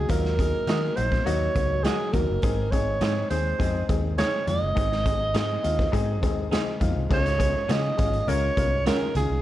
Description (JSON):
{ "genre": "uptempo 1960s-style soul", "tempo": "103 BPM", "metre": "4/4", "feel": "straight", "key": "unclear", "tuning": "A4 = 441 Hz", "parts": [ { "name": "mellow alto saxophone", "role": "melody", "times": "0.0-9.4 s", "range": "Ab4 to Eb5", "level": "-27 LUFS", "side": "right 3 dB", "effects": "slapback echo" }, { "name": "dark baby grand piano", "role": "accompaniment", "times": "0.0-9.4 s", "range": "Gb3 to Bb4", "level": "-30 LUFS", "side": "left 7 dB", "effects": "none" }, { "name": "vintage muted fingered electric bass", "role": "bass", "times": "0.0-9.4 s", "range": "Gb1 to Eb3", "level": "-28 LUFS", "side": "equal", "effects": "none" }, { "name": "raw garage drum kit", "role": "drums", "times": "0.1-9.3 s", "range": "crash cymbal, hi-hat, kick drum, snare drum", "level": "-27 LUFS", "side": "equal", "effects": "none" }, { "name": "congas", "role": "percussion", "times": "0.1-9.3 s", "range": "none", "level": "-38 LUFS", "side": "equal", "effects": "none" }, { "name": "electric guitar through a small old amp", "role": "stabs", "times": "0.7-9.0 s", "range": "Db4 to Eb5", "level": "-34 LUFS", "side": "right 8 dB", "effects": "lush chorus, slapback echo" } ], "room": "light reverb, studio ambience", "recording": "dark, warm production", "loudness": "-22 LUFS", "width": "side -14 dB against mid", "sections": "0.0-7.1 A section; 7.1-9.4 B section", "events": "none", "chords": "0.0 Ebm; 2.4 Ab; 7.1 Db" }